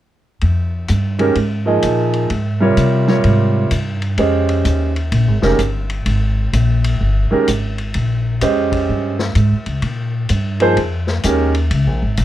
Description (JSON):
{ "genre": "modal jazz", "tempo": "128 BPM", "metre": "4/4", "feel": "swing 65% on 8ths", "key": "F minor", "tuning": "A4 = 440 Hz", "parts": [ { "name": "upright bass", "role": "bass", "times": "0.4-12.2 s", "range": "F1 to C3", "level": "-16 LUFS", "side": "equal", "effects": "none" }, { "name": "vintage drum kit", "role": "drums", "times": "0.4-12.2 s", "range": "hi-hat, kick drum, ride cymbal, snare drum", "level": "-27 LUFS", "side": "left 3 dB", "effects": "none" }, { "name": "clear baby grand piano", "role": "accompaniment", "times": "1.2-11.5 s", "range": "C3 to Eb5", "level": "-16 LUFS", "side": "right 2 dB", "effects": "none" } ], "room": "light reverb", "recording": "dark, warm production", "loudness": "-14 LUFS", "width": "side -13 dB against mid", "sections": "0.4-12.2 A section", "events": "none", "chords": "0.4 Fm11; 7.9 Bbm11" }